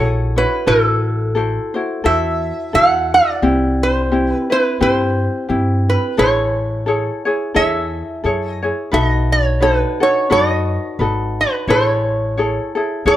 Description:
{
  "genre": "Hawaiian",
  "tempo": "87 BPM",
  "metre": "4/4",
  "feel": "swing 57% on 8ths",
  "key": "unclear",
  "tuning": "A4 = 440 Hz",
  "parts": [
    { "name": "metal-body resonator slide guitar", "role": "melody", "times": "0.0-13.2 s", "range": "A4 to F#5", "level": "-17 LUFS", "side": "right 2 dB", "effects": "plate reverb" },
    { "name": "ukulele", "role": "accompaniment", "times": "0.0-13.2 s", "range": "C4 to C#5", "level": "-19 LUFS", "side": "left 2 dB", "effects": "none" },
    { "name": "upright bass", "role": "bass", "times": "0.0-13.2 s", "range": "G#1 to G2", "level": "-20 LUFS", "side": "equal", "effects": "none" }
  ],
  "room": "moderate small room reverb, RT60 0.5 s",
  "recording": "none",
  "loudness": "-14 LUFS",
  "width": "side -13 dB against mid",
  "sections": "0.0-13.2 A section",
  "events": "none",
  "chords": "0.0 F#m7; 0.7 Am6; 3.4 Cmaj7; 6.2 Amaj7; 8.9 B7; 11.7 Amaj7",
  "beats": "| 0.67 1.36 2.05 2.74 | 3.43 4.12 4.81 5.50 | 6.18 6.87 7.56 8.25 | 8.94 9.62 10.31 11.00 | 11.69 12.37 13.06"
}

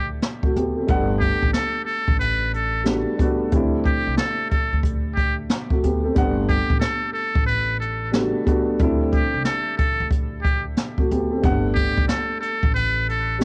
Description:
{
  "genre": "hip hop, boom-bap hip-hop",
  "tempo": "91 BPM",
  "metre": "4/4",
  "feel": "swing 63% on 16ths",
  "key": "G major",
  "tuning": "A4 = 445 Hz",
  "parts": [
    { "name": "trumpet with metal mute", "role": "melody", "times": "0.0-13.4 s", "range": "G4 to B4", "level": "-27 LUFS", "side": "equal", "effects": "high-pass filter, low-pass filter, cassette tape" },
    { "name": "dark upright piano", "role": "accompaniment", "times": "0.0-13.4 s", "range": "G3 to F#5", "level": "-27 LUFS", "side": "equal", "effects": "high-pass filter, low-pass filter, cassette tape" },
    { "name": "upright bass", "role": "bass", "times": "0.0-13.4 s", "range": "G1 to D2", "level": "-28 LUFS", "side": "equal", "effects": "none" },
    { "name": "jazz brush drum kit", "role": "drums", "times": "0.2-13.4 s", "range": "hi-hat, kick drum, snare drum", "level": "-25 LUFS", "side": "equal", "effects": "cassette tape" }
  ],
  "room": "small room ambience",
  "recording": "home recording on cassette",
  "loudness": "-21 LUFS",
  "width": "mono",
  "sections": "0.0-13.4 A section",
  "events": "none",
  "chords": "0.0 D7sus4; 0.9 Gmaj9; 3.5 D7sus4; 6.2 Gmaj9; 8.8 D7sus4; 11.4 Gmaj9",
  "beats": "0.23 | 0.89 1.55 2.21 2.86 | 3.52 4.18 4.84 5.50 | 6.16 6.82 7.48 8.14 | 8.80 9.46 10.12 10.78 | 11.44 12.10 12.75 13.41"
}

